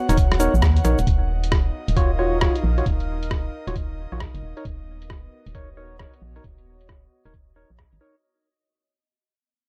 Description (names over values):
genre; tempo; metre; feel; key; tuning
UK garage, two-step garage; 134 BPM; 4/4; swing 63% on 16ths; unclear; A4 = 440 Hz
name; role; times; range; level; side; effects
airy breathy pad; sustained chords; 0.0-8.2 s; Eb5 to Gb5; -38 LUFS; equal; chorus, sidechain pumping
warbly tape-like pad; texture; 0.0-8.2 s; B3 to F5; -36 LUFS; equal; chorus, built-in reverb, phaser, sidechain pumping
percussive organ stab; stabs; 0.1-8.2 s; D#4 to Db5; -28 LUFS; equal; chorus
organ-like FM bass; bass; 0.1-8.0 s; D#1 to D#2; -25 LUFS; equal; none
boom bap sampler-style drum kit; drums; 0.1-8.2 s; hi-hat, rim click; -30 LUFS; equal; low-pass filter on snare, low-pass filter on hats
cabasa; percussion; 0.1-1.1 s; none; -40 LUFS; equal; none
electronic kick drum; drums; 0.2-7.9 s; none; -25 LUFS; equal; none
room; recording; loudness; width
little or no reverb; dark, warm production; -21 LUFS; mono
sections
0.0-8.2 A section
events
fade-out 0.0-8.2; filter sweep on drum 0.0-8.2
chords
0.0 Bmaj7/D#; 1.1 Ebm9; 4.4 Bmaj7/D#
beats
0.17 0.62 | 1.07 1.52 1.97 2.41 | 2.86 3.31 3.76 4.20 | 4.65 5.10 5.55 6.00 | 6.44 6.89 7.34 7.79